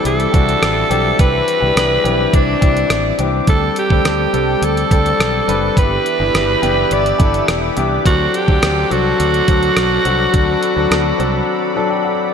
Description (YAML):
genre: 1980s-style pop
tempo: 105 BPM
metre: 4/4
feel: straight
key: unclear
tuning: A4 = 440 Hz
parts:
  - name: raspy alto saxophone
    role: melody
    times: 0.0-12.1 s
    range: D4 to D5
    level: -17 LUFS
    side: right 2 dB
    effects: digital delay
  - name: clear concert grand piano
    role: accompaniment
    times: 0.0-12.3 s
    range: E3 to A5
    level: -19 LUFS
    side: left 5 dB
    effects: none
  - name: brassy analog pad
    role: sustained chords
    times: 0.0-12.3 s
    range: G3 to D6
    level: -25 LUFS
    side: left 1 dB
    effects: chorus
  - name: fretless electric bass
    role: bass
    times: 0.1-11.4 s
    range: E1 to D2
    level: -20 LUFS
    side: right 1 dB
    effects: none
  - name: clean 12-bit digital drum machine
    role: drums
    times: 0.1-11.3 s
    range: hi-hat, kick drum, rim click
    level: -18 LUFS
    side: right 1 dB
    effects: none
room: moderate plate reverb, RT60 2.0 s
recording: bright 1980s-style digital production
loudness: -12 LUFS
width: side -7 dB against mid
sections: 0.0-12.3 A section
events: break 11.5-12.3; grand piano fill 11.5-12.3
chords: 0.0 Cadd9; 3.5 D7sus4; 5.8 G6; 8.1 D7